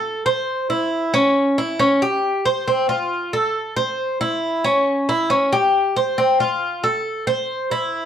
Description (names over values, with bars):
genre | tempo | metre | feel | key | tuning
latin | 137 BPM | 4/4 | straight | unclear | A4 = 440 Hz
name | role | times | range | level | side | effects
Cuban tres | solo | 0.0-8.1 s | C4 to C5 | -17 LUFS | equal | none
room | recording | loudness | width
moderate large studio reverb, RT60 1.0 s | dark, warm production | -17 LUFS | side -9 dB against mid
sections
0.0-8.1 A section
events
none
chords
none